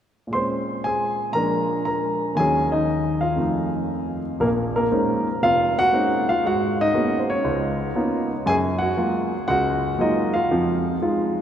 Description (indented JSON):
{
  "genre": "solo jazz",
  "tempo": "118 BPM",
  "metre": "4/4",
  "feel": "swing 66% on 8ths",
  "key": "Bb minor",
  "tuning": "A4 = 441 Hz",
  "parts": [
    { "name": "warm grand piano", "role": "solo", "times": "0.3-11.4 s", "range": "F1 to C6", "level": "-20 LUFS", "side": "equal", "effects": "none" }
  ],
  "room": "wet cathedral reverb, RT60 6.5 s",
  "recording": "recorded in a church or concert hall",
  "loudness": "-20 LUFS",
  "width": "side -9 dB against mid",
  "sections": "0.3-4.4 A section; 4.4-11.4 B section",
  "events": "none",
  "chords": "0.3 Bbm9; 1.3 Bb7; 2.4 Ebm7; 3.4 F7; 4.4 Bbm11; 6.4 Abm11; 7.4 Db13; 8.5 Gbmaj9; 10.5 Fm7",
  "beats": "| 0.32 0.83 1.34 1.85 | 2.36 2.87 3.38 3.89 | 4.40 4.91 5.42 5.92 | 6.43 6.94 7.45 7.96 | 8.47 8.97 9.48 9.99 | 10.50 11.01"
}